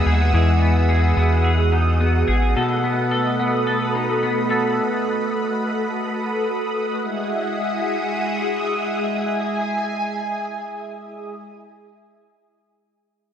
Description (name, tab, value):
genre	dream pop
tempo	108 BPM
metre	4/4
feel	straight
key	E major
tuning	A4 = 439 Hz
part	string machine, cellos	sustained chords	0.0-11.4 s	G#4 to E6	-22 LUFS	right 1 dB	phaser, ensemble chorus
part	clean electric guitar	arpeggios	0.0-5.3 s	B2 to A4	-22 LUFS	left 2 dB	analog chorus, tape echo
part	round analog bass	bass	0.0-2.5 s	A1 to E2	-17 LUFS	equal	none
room	light reverb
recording	dark, warm production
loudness	-18 LUFS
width	side -9 dB against mid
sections	0.0-11.4 A section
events	none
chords	0.0 Emaj9; 2.6 B7; 7.0 Emaj9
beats	| 0.34 0.89 1.45 2.00 | 2.56 3.11 3.67 4.22 | 4.78 5.34 5.89 6.45 | 7.00 7.56 8.11 8.67 | 9.22 9.78 10.34 10.89